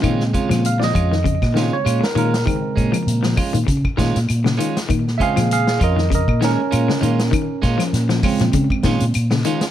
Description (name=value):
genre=afrobeat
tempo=99 BPM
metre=4/4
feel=swing 55% on 16ths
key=Bb minor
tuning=A4 = 441 Hz
part: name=barky tine electric piano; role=accompaniment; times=0.0-9.1 s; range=Db3 to F5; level=-22 LUFS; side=right 4 dB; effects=phaser
part: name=electric guitar at the edge of break-up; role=arpeggios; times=0.0-9.6 s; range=Db3 to F3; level=-24 LUFS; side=left 8 dB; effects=slapback echo
part: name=electric guitar at the edge of break-up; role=stabs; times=0.0-9.6 s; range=Ab3 to F4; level=-25 LUFS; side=right 7 dB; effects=none
part: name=vintage muted fingered electric bass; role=bass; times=0.0-9.4 s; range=F2 to Db3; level=-19 LUFS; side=equal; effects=none
part: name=vintage drum kit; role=drums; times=0.0-9.7 s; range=hi-hat, kick drum, snare drum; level=-23 LUFS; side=equal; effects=none
part: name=claves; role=percussion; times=0.0-9.3 s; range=none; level=-30 LUFS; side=left 7 dB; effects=none
room=light reverb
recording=none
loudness=-16 LUFS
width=side -11 dB against mid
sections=0.0-9.7 A section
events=tine electric piano solo 0.0-9.7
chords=0.0 Bbm7